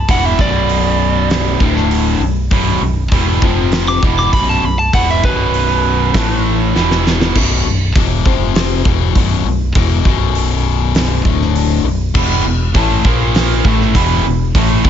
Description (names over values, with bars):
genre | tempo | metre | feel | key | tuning
hard rock | 100 BPM | 4/4 | straight | B minor from 7.3 s | A4 = 440 Hz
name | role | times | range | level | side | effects
lightly driven lead guitar | melody | 0.0-6.4 s | B4 to D6 | -19 LUFS | equal | plate reverb, tape echo
cranked stack guitar | riff | 0.0-14.9 s | B1 to A#3 | -18 LUFS | left 13 dB | overdrive
overdriven electric guitar | riff | 0.0-7.3, 12.2-14.9 s | B1 to A#3 | -18 LUFS | right 15 dB | spring reverb
overdriven fingered electric bass | bass | 0.0-14.9 s | B0 to A#1 | -17 LUFS | equal | none
huge arena drum kit | drums | 0.1-14.9 s | crash cymbal, hi-hat, kick drum, snare drum | -16 LUFS | equal | none
room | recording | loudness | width
little or no reverb | nothing above 7.6 kHz | -11 LUFS | side -9 dB against mid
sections
0.0-7.3 A section; 7.3-14.9 B section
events
lead electric guitar solo 0.0-7.3; drum fill 6.7-7.3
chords
0.0 Bm; 1.6 D5; 2.2 B5; 3.4 F5; 4.0 B5; 6.1 A5; 6.7 E5; 7.3 B5; 8.3 F5; 8.9 B5; 11.3 D5; 11.9 B5; 12.2 E5; 13.1 A#5; 13.7 E5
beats
| 0.08 0.69 1.30 1.90 | 2.51 3.12 3.72 4.33 | 4.93 5.54 6.14 6.75 | 7.35 7.95 8.55 9.16 | 9.76 10.36 10.96 11.56 | 12.15 12.75 13.35 13.95 | 14.55